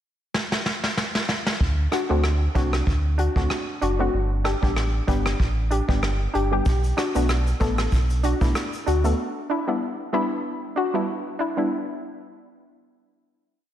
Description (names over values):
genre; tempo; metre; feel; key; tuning
dancehall; 95 BPM; 4/4; swing 56% on 16ths; E minor; A4 = 440 Hz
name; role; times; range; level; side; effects
vintage brush drum kit; drums; 0.3-9.2 s; hi-hat, kick drum, rim click, shaker, snare drum; -25 LUFS; equal; none
sub bass with octave; bass; 1.6-9.1 s; F#1 to D2; -23 LUFS; equal; none
soft round pluck; accompaniment; 1.9-11.7 s; G3 to A4; -25 LUFS; left 1 dB; chorus
room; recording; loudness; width
moderate lush hall reverb, RT60 2.0 s, studio ambience; dreamy mix soaked in reverb; -21 LUFS; side -11 dB against mid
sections
0.0-1.6 pickup bar; 1.6-11.7 verse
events
drum fill 0.3-1.6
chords
0.0 N.C.; 1.6 D7; 4.1 G; 6.7 Bm7; 9.2 Em7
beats
0.34 0.98 | 1.61 2.24 2.87 3.50 | 4.13 4.76 5.40 6.03 | 6.66 7.29 7.92 8.55 | 9.19 9.82 10.45 11.08